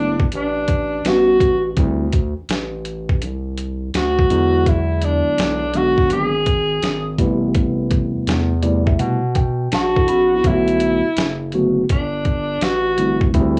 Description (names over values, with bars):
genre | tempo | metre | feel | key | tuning
hip hop, jazz-hop | 83 BPM | 4/4 | swing 66% on 16ths | A dorian | A4 = 440 Hz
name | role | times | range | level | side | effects
clear alto saxophone | melody | 0.0-13.2 s | D4 to G#4 | -21 LUFS | equal | slapback echo
mellow tine electric piano | accompaniment | 0.0-13.6 s | C3 to B5 | -22 LUFS | equal | none
growling FM bass | bass | 0.0-13.6 s | F#1 to B2 | -26 LUFS | equal | none
boom bap sampler-style drum kit | drums | 0.2-13.6 s | hi-hat, kick drum, snare drum | -22 LUFS | equal | vintage 12-bit sampler grit
room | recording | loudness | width
moderate small room reverb, RT60 0.5 s | worn, warbling old tape, cassette tape, warbly pitch drift, small room ambience | -18 LUFS | mono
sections
0.0-10.4 A section; 10.4-13.6 B section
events
tine electric piano fill 8.3-10.4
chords
0.0 Bm7; 1.1 A13; 1.8 D7(no3); 4.3 E7; 7.2 Am9; 10.4 Bm7; 12.6 A5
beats
0.33 1.05 | 1.77 2.50 3.22 3.94 | 4.67 5.39 6.11 6.83 | 7.56 8.28 9.00 9.72 | 10.45 11.17 11.89 12.62 | 13.34